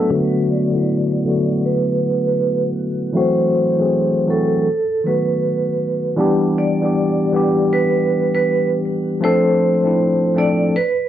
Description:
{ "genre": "hip hop", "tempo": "79 BPM", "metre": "4/4", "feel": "swing 65% on 16ths", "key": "unclear", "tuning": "A4 = 441 Hz", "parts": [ { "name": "bright tine electric piano", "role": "accompaniment", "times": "0.0-10.8 s", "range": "D3 to A4", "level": "-17 LUFS", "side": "left 1 dB", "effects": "medium stereo tremolo, low-pass filter" }, { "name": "vibraphone with hard mallets", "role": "melody", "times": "0.5-11.1 s", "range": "A4 to D5", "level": "-20 LUFS", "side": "right 2 dB", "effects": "low-pass filter, analog delay" } ], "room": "moderate studio reverb, RT60 0.5 s", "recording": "none", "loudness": "-15 LUFS", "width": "side -11 dB against mid", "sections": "0.1-11.1 A section", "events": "filter sweep 0.1-11.1", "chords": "0.1 Bm7; 3.2 F#m7b5; 4.7 B7; 6.2 Em7; 9.2 Dm7" }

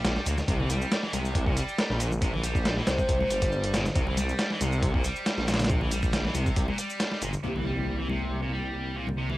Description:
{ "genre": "breakbeat, breaks", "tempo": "138 BPM", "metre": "4/4", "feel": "straight", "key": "unclear", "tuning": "A4 = 439 Hz", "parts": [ { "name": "distorted electric guitar", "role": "riff", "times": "0.0-9.4 s", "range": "Bb2 to G3", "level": "-33 LUFS", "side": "right 1 dB", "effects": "overdrive, tube saturation, low-pass filter, cassette tape, analog delay" }, { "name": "detuned saw bass", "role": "bass", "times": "0.0-9.4 s", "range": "G1 to D2", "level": "-29 LUFS", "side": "equal", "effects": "none" }, { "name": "dusty soul sampler-style drum kit", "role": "drums", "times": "0.0-7.3 s", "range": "hi-hat, kick drum, snare drum", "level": "-27 LUFS", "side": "equal", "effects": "overdrive" }, { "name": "shaker", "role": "drums", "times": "0.0-7.4 s", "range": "none", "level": "-42 LUFS", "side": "equal", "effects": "overdrive" }, { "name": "congas", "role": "percussion", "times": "0.4-9.4 s", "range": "none", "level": "-36 LUFS", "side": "left 2 dB", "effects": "none" }, { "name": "kalimba", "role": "melody", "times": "1.8-3.1 s", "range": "Bb4 to C5", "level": "-33 LUFS", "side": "equal", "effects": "telephone sound, cassette tape, analog delay" }, { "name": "tine electric piano", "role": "stabs", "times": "7.4-9.4 s", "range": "Bb3 to G4", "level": "-35 LUFS", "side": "left 2 dB", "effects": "medium stereo tremolo, vintage 12-bit sampler grit, cassette tape, analog delay" }, { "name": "impact", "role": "sound effects", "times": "7.4-9.2 s", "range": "none", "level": "-39 LUFS", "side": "equal", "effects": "none" } ], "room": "moderate booth ambience, RT60 0.2 s", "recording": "home recording on cassette", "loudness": "-25 LUFS", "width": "side -17 dB against mid", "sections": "0.0-7.4 A section; 7.4-9.4 B section", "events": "impact 7.4-9.2", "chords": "0.0 C7(no3); 7.4 C7" }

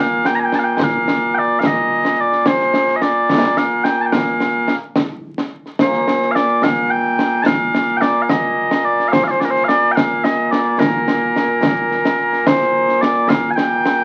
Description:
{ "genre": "scottish traditional, Scottish pipe music", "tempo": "72 BPM (dotted quarters)", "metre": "6/8", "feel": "straight", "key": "Bb major", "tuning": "A4 = 445 Hz", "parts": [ { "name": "mellow small bagpipes", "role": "melody", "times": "0.0-14.0 s", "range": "Bb2 to Bb5", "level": "-17 LUFS", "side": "equal", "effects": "none" }, { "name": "concert snare drum and concert bass drum", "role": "drums", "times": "0.3-14.0 s", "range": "none", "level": "-22 LUFS", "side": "equal", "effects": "none" } ], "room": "moderate studio reverb, RT60 0.6 s", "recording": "very old 78 rpm record, vinyl crackle", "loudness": "-16 LUFS", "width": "mono", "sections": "0.0-12.5 A section; 12.5-14.0 A section", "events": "none", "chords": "none" }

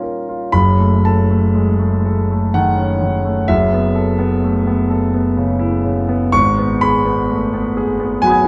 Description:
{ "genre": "classical, impressionist solo piano", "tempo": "53-66 BPM", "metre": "3/4", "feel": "rubato", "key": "F# dorian", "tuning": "A4 = 442 Hz", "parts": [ { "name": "clear concert grand piano", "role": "solo", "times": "0.0-8.5 s", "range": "F#1 to G#6", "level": "-16 LUFS", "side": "equal", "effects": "none" } ], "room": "moderate stone room reverb, RT60 0.9 s", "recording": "dark, warm production", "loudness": "-16 LUFS", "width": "mono", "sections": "0.5-8.5 A section", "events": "none", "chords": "0.0 Bbm6; 0.5 F#m6; 3.5 Aadd9/F#; 6.3 G#m7" }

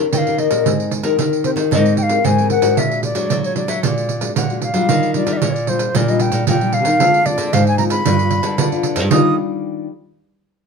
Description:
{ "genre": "samba and choro", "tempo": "114 BPM", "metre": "4/4", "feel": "straight", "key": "Eb major", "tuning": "A4 = 440 Hz", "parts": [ { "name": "nylon-string guitar", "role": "accompaniment", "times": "0.0-9.9 s", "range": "Bb2 to B4", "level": "-20 LUFS", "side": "left 7 dB", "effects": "none" }, { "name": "nylon-string guitar", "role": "bass", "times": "0.0-9.4 s", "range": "G2 to Gb3", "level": "-20 LUFS", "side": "equal", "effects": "none" }, { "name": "wooden flute", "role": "melody", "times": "0.1-9.4 s", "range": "C5 to Eb6", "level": "-19 LUFS", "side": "equal", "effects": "none" }, { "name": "pandeiro", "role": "percussion", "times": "0.1-9.2 s", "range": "none", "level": "-20 LUFS", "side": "right 8 dB", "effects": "none" } ], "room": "moderate studio reverb, RT60 0.9 s", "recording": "minimal, uncompressed stereo recording", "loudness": "-14 LUFS", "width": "side -5 dB against mid", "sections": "0.0-4.9 A section; 4.9-9.1 B section; 9.1-10.7 C section", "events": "none", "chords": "0.0 Eb7; 0.7 Abmaj9; 2.8 Bb7b13; 4.9 Ebmaj9; 7.0 Dm7b5; 8.1 G7; 9.1 Ebmaj9" }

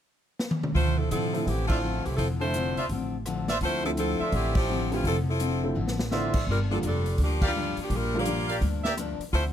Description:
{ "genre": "jazz, big band swing", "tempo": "168 BPM", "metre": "4/4", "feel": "swing 64% on 8ths", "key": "D minor", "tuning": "A4 = 440 Hz", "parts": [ { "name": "swinging big-band drum kit", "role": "drums", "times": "0.4-9.4 s", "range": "crash cymbal, hi-hat, kick drum, rim click, snare drum, toms", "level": "-31 LUFS", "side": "right 1 dB", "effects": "none" }, { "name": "picked steel-string acoustic guitar", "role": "accompaniment", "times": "0.7-9.5 s", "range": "G2 to E4", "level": "-34 LUFS", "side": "left 8 dB", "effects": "none" }, { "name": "upright bass", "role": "bass", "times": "0.7-9.5 s", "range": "F1 to A2", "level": "-29 LUFS", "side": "equal", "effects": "none" }, { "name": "edgy saxophone section", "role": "melody", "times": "0.8-9.4 s", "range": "E3 to D5", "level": "-29 LUFS", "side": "equal", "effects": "none" }, { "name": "warm baby grand piano", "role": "accompaniment", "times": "1.3-8.3 s", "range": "D3 to G4", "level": "-32 LUFS", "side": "right 1 dB", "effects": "none" }, { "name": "clear trumpet section", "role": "stabs", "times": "1.7-8.9 s", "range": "F4 to F5", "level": "-31 LUFS", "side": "right 2 dB", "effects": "none" } ], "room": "little or no reverb", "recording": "close, detailed microphones", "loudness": "-24 LUFS", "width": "side -10 dB against mid", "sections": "0.8-9.5 A section", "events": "drum fill 0.4-0.8, 5.8-6.1; band accent 1.6, 4.5, 7.4", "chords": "0.0 N.C.; 0.8 Dm9; 6.5 Gm7" }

